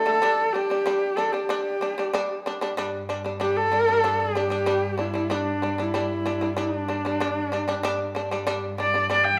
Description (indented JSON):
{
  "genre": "mongolian traditional, Mongolian folk",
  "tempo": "94 BPM",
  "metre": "4/4",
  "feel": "straight",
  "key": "unclear",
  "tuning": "A4 = 443 Hz",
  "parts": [
    { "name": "warm horsehead fiddle", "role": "melody", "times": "0.0-9.4 s", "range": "D4 to G5", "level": "-26 LUFS", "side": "equal", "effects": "none" },
    { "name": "shamisen", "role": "arpeggios", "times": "0.0-9.4 s", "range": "D3 to D4", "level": "-30 LUFS", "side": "equal", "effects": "none" },
    { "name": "clear cello", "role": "drone", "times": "2.8-9.4 s", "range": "G2", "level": "-36 LUFS", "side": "equal", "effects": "none" }
  ],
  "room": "wet large studio reverb, RT60 1.1 s",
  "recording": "band playing live in one room",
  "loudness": "-25 LUFS",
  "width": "mono",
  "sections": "0.0-2.8 A section; 2.8-9.4 B section",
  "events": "none",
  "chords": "0.2 G5",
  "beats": "| 0.21 0.85 1.49 2.12 | 2.76 3.40 4.03 4.67 | 5.30 5.94 6.57 7.21 | 7.84 8.48 9.11"
}